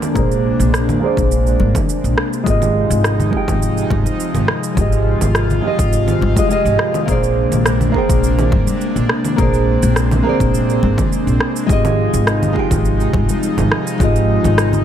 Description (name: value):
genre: sunset chillout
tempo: 104 BPM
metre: 4/4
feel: straight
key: F dorian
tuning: A4 = 440 Hz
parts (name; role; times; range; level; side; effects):
- nylon-string guitar; accompaniment; 0.0-14.8 s; Ab3 to G5; -19 LUFS; right 1 dB; auto-pan, low-pass filter, digital delay
- airy breathy pad; sustained chords; 0.0-14.8 s; C3 to F4; -21 LUFS; left 1 dB; chorus
- electronic congas, shaker and rim click; drums; 0.0-14.8 s; none; -22 LUFS; right 2 dB; overdrive, studio reverb
- upright bass; bass; 0.2-14.8 s; Ab1 to Bb1; -17 LUFS; equal; tube saturation
- electronic kick drum; drums; 0.2-14.1 s; none; -20 LUFS; equal; overdrive, studio reverb
- congas; percussion; 0.9-14.8 s; none; -24 LUFS; left 3 dB; none
room: light reverb, studio ambience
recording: none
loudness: -13 LUFS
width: side -10 dB against mid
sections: 0.0-14.8 A section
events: filter sweep on nylon-string guitar 0.0-14.8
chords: 0.0 Bb9; 2.5 Fm7/Ab; 7.1 Bb9; 11.7 Fm7/Ab